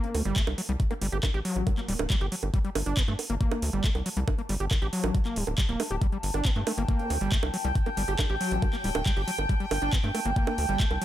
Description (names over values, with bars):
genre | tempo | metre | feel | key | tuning
psychedelic trance | 138 BPM | 4/4 | straight | G harmonic minor | A4 = 440 Hz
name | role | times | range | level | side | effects
vowel-sweep wobble bass | second line | 0.0-2.3, 7.0-9.0 s | F#3 to C4 | -43 LUFS | right 2 dB | ensemble chorus, sidechain pumping, high-pass filter, dub echo
overdriven acid bass | riff | 0.0-11.0 s | F#3 to G4 | -33 LUFS | moving between left 4 dB and right 3 dB | distortion, auto-pan, sidechain pumping, dub echo
garage drum kit | drums | 0.0-11.0 s | bongos, handclaps, hi-hat | -32 LUFS | right 4 dB | overdrive, small room ambience
warbly tape-like pad | texture | 0.0-11.0 s | A5 | -40 LUFS | left 1 dB | chorus, built-in reverb, sidechain pumping
tight sequencer bass | bass | 0.1-11.0 s | D1 to G2 | -30 LUFS | equal | none
electronic kick drum | drums | 0.4-10.9 s | none | -26 LUFS | equal | overdrive, small room ambience
bubbling stepped-filter texture | sustained chords | 6.7-11.0 s | G5 | -34 LUFS | right 1 dB | chorus, built-in reverb, sidechain pumping
room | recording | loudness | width
digital ambience | none | -25 LUFS | side -12 dB against mid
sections
0.0-11.0 A section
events
none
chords
0.0 G5